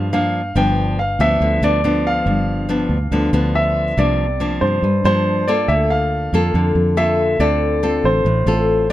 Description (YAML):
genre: bossa nova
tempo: 140 BPM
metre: 4/4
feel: straight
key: unclear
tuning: A4 = 442 Hz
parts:
  - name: warm grand piano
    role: melody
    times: 0.0-8.9 s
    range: C5 to G5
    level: -20 LUFS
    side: equal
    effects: none
  - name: nylon-string guitar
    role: accompaniment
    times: 0.0-8.9 s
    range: G2 to A4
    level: -19 LUFS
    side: left 2 dB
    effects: none
  - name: fingered electric bass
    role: bass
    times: 0.0-8.9 s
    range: G1 to G2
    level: -20 LUFS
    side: right 1 dB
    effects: none
room: little or no reverb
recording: close, detailed microphones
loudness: -15 LUFS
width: side -14 dB against mid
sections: 0.0-8.9 A section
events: none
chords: 0.0 C9sus4 (rootless); 0.6 G7; 4.0 C9sus4; 5.7 Bbmaj7/D; 7.4 Dm7